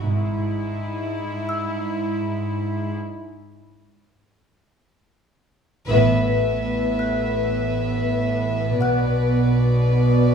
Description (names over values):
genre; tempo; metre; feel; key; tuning
cinematic, suspense film score; free time; none; none; unclear; A4 = 437 Hz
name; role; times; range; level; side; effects
warm symphonic violin section; melody; 0.0-10.3 s; E4 to E5; -28 LUFS; equal; none
rich symphonic cello section; bass; 0.0-10.3 s; G#2 to B2; -24 LUFS; right 3 dB; none
warm symphonic double bass section; bass; 0.0-0.7, 5.9-10.3 s; G#1 to B1; -23 LUFS; right 1 dB; none
music box; texture; 0.0-10.3 s; F#5 to F#6; -31 LUFS; equal; none
warm symphonic violin section; second line; 5.9-10.3 s; B4; -25 LUFS; left 12 dB; none
dark symphonic viola section; accompaniment; 5.9-10.3 s; B3; -27 LUFS; right 1 dB; none
room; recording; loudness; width
wet recital hall reverb, RT60 1.4 s; heard from further back in the room, studio ambience; -19 LUFS; side -6 dB against mid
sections
0.0-5.9 A section; 5.9-10.3 B section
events
break 3.0-5.9; band accent 5.9-6.6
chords
0.0 E/G#; 3.0 N.C.; 5.9 Asus2; 8.8 Bm